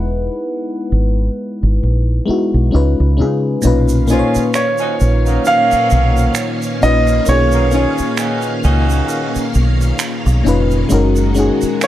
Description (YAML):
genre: R&B, neo-soul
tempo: 66 BPM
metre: 4/4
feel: swing 56% on 16ths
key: unclear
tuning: A4 = 440 Hz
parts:
  - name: clear concert grand piano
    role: melody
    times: 0.0-11.9 s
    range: C#5 to F#5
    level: -16 LUFS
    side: right 2 dB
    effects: slapback echo, plate reverb
  - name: FM electric piano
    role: accompaniment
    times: 0.0-11.9 s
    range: A#2 to C#5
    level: -18 LUFS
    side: left 3 dB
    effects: chorus, plate reverb
  - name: deep dub fingered electric bass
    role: bass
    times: 0.0-11.7 s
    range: E1 to C#3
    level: -14 LUFS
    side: equal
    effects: none
  - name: string machine, violins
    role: sustained chords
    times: 3.6-11.9 s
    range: A#2 to E#5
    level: -22 LUFS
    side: equal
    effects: ensemble chorus
  - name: egg shaker and finger snaps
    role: percussion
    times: 3.6-11.9 s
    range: none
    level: -25 LUFS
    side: right 6 dB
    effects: none
  - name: warm horn section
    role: stabs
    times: 4.1-9.5 s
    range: F#3 to G#4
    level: -23 LUFS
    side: right 3 dB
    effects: plate reverb
room: light reverb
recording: dark, warm production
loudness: -12 LUFS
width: side -13 dB against mid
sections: 0.0-3.6 A section; 3.6-11.9 B section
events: none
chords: 0.0 Emaj7; 2.7 C#9; 3.6 Bmaj9#11; 10.9 F#69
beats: | 0.00 0.91 1.82 2.73 | 3.64 4.54 5.45 6.36 | 7.27 8.18 9.09 10.00 | 10.91 11.82